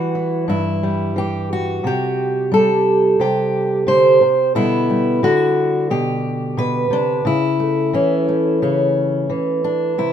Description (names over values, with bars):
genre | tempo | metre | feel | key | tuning
folk, solo fingerstyle acoustic guitar | 89 BPM | 4/4 | straight | unclear | A4 = 439 Hz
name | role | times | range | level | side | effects
fingerpicked steel-string acoustic guitar | solo | 0.0-10.1 s | G2 to C5 | -15 LUFS | equal | none
room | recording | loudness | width
light reverb | minimal, uncompressed stereo recording | -15 LUFS | side -9 dB against mid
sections
0.0-10.1 A section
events
none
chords
0.0 C; 4.5 G/B; 7.2 A/C#